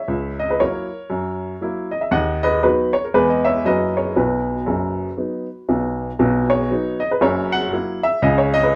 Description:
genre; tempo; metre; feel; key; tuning
jazz, stride piano; 118 BPM; 4/4; swing 60% on 8ths; B major; A4 = 440 Hz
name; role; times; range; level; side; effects
warm upright piano; solo; 0.0-8.8 s; F#1 to F#5; -20 LUFS; equal; none
room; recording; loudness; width
moderate studio reverb, RT60 0.5 s; band playing live in one room; -20 LUFS; mono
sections
0.0-6.2 A section; 6.2-8.8 A section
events
none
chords
0.1 F#7/C#; 2.1 B/D#; 3.1 E; 3.7 F#7; 4.2 B; 7.2 F#7; 8.2 N.C.

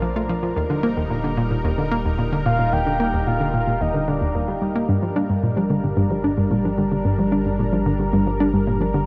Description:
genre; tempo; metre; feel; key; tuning
ambient, sequencer-driven space music; 111 BPM; 4/4; straight; G minor; A4 = 440 Hz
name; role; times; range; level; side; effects
soft octave-layered synth lead; melody; 0.0-4.6 s; Bb4 to G5; -30 LUFS; equal; chorus, delay
lush unison pad; sustained chords; 0.0-9.1 s; F3 to Bb4; -30 LUFS; equal; chorus
hollow square pluck; riff; 0.0-9.0 s; Eb2 to D4; -24 LUFS; equal; chorus, delay
round analog bass; bass; 0.0-9.1 s; Eb1 to Bb1; -32 LUFS; equal; tube saturation
thumb-piano-like synth pluck; arpeggios; 4.9-9.1 s; G2 to G3; -25 LUFS; equal; chorus, delay
room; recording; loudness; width
moderate huge ambient reverb, RT60 8.0 s; none; -21 LUFS; mono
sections
0.0-9.1 A section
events
none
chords
0.0 Bb; 0.6 Eb; 4.9 Gm

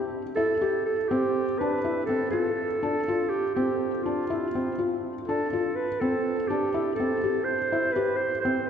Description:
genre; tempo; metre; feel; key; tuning
contemporary instrumental, contemporary; 122 BPM; 5/4; straight; unclear; A4 = 440 Hz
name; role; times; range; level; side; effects
growling clarinet; melody; 0.0-8.7 s; F4 to C5; -27 LUFS; right 2 dB; none
felt-muted upright piano; arpeggios; 0.0-8.7 s; C4 to G4; -28 LUFS; left 2 dB; none
room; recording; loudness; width
wet cathedral reverb, RT60 4.4 s; recorded in a church or concert hall; -24 LUFS; side -8 dB against mid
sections
0.0-8.7 A section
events
none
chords
0.0 C (rootless); 1.1 Dm7; 6.0 Am7

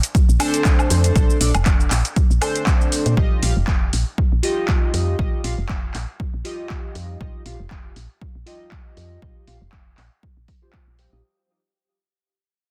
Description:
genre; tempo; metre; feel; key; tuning
deep house; 119 BPM; 4/4; swing 55% on 16ths; unclear; A4 = 440 Hz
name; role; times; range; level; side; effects
deep house drum kit; drums; 0.0-11.1 s; cabasa, handclaps, hi-hat, woodblock; -28 LUFS; equal; overdrive, low-pass filter on hats, studio reverb, low-pass filter on perc, low-pass filter on snare
electronic kick drum; drums; 0.1-10.8 s; none; -21 LUFS; equal; overdrive, studio reverb
woody FM bass; bass; 0.3-11.2 s; F1 to Bb2; -23 LUFS; equal; sidechain pumping
chorused polysynth; stabs; 0.4-11.2 s; D4 to F5; -27 LUFS; equal; sidechain pumping, analog delay
room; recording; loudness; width
digital ambience; dense, heavily limited modern master; -19 LUFS; mono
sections
0.0-11.2 A section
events
fade-out 0.0-11.2; filter sweep on analog polysynth 0.0-11.2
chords
0.0 Bbmaj9; 3.2 Ebadd9

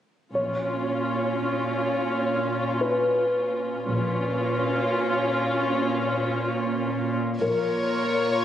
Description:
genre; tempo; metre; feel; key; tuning
cinematic, suspense film score; free time; none; none; Bb phrygian; A4 = 440 Hz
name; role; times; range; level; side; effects
dark symphonic double bass section; bass; 0.3-8.1 s; Bb1; -32 LUFS; equal; none
warm grand piano; texture; 0.3-8.4 s; Bb4 to Db5; -29 LUFS; left 2 dB; none
rich symphonic viola section; accompaniment; 0.4-8.4 s; Db4 to Bb4; -26 LUFS; equal; none
warm symphonic cello section; bass; 0.4-8.4 s; Bb2; -29 LUFS; right 2 dB; none
warm studio violin section; melody; 7.4-8.4 s; Db5; -26 LUFS; left 2 dB; none
room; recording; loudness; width
wet scoring stage reverb, RT60 2.1 s; recorded on a phone in the room, studio reverb, compression; -23 LUFS; side -10 dB against mid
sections
0.4-7.4 A section; 7.4-8.4 B section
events
none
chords
0.4 Bbm

